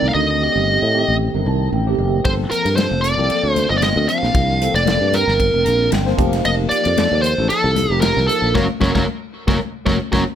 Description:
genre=electric jazz fusion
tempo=114 BPM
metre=4/4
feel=swing 53% on 16ths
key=G minor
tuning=A4 = 438 Hz
part: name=smooth overdriven lead guitar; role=melody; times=0.0-10.2 s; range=F#4 to F5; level=-19 LUFS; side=equal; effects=tape echo
part: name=tine electric piano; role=accompaniment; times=0.0-10.2 s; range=Eb3 to A5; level=-22 LUFS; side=right 1 dB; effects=fast stereo tremolo, lush chorus
part: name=sustaining fretless electric bass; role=bass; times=0.0-10.2 s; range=F1 to A2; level=-20 LUFS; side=equal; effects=none
part: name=modern studio drum kit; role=drums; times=2.2-10.3 s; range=hi-hat, kick drum, ride cymbal, snare drum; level=-23 LUFS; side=equal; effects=none
part: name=congas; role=percussion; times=2.2-10.3 s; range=none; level=-26 LUFS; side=left 9 dB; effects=none
room=moderate studio reverb, RT60 0.5 s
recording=none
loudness=-15 LUFS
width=side -9 dB against mid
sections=0.0-10.4 A section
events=tine electric piano fill 1.2-2.3, 5.7-6.5, 9.9-10.4; band accent 8.6-10.4; drum fill 10.1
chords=0.0 Am7b5; 2.3 Gm11; 6.2 F9sus4; 8.6 F#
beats=| 0.15 0.67 1.20 1.73 | 2.25 2.78 3.30 3.83 | 4.35 4.88 5.40 5.93 | 6.46 6.98 7.50 8.03 | 8.56 9.08 9.61 10.13

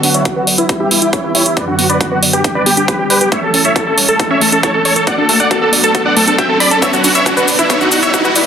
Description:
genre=uplifting trance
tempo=137 BPM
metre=4/4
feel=straight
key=B minor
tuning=A4 = 443 Hz
part: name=big supersaw lead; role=melody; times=0.0-8.3 s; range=E4 to B5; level=-14 LUFS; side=equal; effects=sidechain pumping, low-pass filter, tape echo
part: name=analog string pad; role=sustained chords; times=0.0-8.5 s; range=F#2 to B4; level=-19 LUFS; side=equal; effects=ensemble chorus, sidechain pumping
part: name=analog pluck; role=arpeggios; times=0.0-8.5 s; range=A3 to E5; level=-19 LUFS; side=left 1 dB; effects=chorus, sidechain pumping, digital delay
part: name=electronic hi-hat and shaker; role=drums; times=0.0-8.4 s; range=none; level=-14 LUFS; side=right 2 dB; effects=sidechain pumping on hats, small room reverb, sidechain pumping on perc
part: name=riser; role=sound effects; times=2.5-8.5 s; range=none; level=-20 LUFS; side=equal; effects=none
part: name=electronic kick drum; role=drums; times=0.3-8.2 s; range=none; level=-19 LUFS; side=equal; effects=high-pass filter on kick, small room reverb
room=moderate digital room reverb, RT60 1.1 s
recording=dense, heavily limited modern master, high-pass filter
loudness=-10 LUFS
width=side -8 dB against mid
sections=0.0-8.5 A section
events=build-up 0.0-8.5; filter sweep on supersaw synth 0.0-8.5; filter sweep on synth pluck 0.0-8.5; riser 2.5-8.5; drum fill 6.8-8.5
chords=0.0 Bm; 0.7 Em; 1.6 Bm/F#; 2.4 G; 3.3 A; 5.1 D; 6.8 Bm; 7.7 Em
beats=0.25 0.69 1.13 | 1.57 2.01 2.44 2.88 | 3.32 3.76 4.20 4.63 | 5.07 5.51 5.95 6.39 | 6.82 7.26 7.70 8.14

